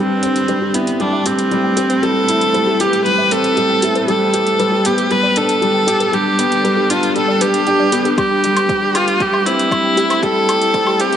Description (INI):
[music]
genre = piano and strings electronica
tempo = 117 BPM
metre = 4/4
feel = straight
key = A minor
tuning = A4 = 442 Hz
[part]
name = rich viola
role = melody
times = 0.0-11.2 s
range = B3 to B4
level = -15 LUFS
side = equal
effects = none
[part]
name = granular cloud pad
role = sustained chords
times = 0.0-11.2 s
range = G3 to C5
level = -23 LUFS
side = left 1 dB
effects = built-in reverb, sidechain pumping
[part]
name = soft round pluck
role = arpeggios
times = 0.0-10.9 s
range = G4 to G5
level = -26 LUFS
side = left 2 dB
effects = none
[part]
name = felt-muted upright piano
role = riff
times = 0.0-11.2 s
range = G3 to G4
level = -18 LUFS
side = equal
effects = none
[part]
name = electronic hi-hat and woodblock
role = drums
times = 0.2-11.2 s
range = none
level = -24 LUFS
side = equal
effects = overdrive
[part]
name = electronic kick drum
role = drums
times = 8.2-10.8 s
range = none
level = -24 LUFS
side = equal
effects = overdrive
[sound]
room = moderate scoring stage reverb, RT60 1.8 s, digital ambience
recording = high-pass filter, nothing above 10.8 kHz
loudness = -13 LUFS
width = side -9 dB against mid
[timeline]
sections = 0.0-11.2 A section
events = build-up 0.0-11.2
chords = 0.0 Am7; 4.1 Gadd9; 8.2 Am7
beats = 0.49 1.00 1.52 | 2.03 2.54 3.06 3.57 | 4.08 4.59 5.11 5.62 | 6.13 6.65 7.16 7.67 | 8.18 8.70 9.21 9.72 | 10.24 10.75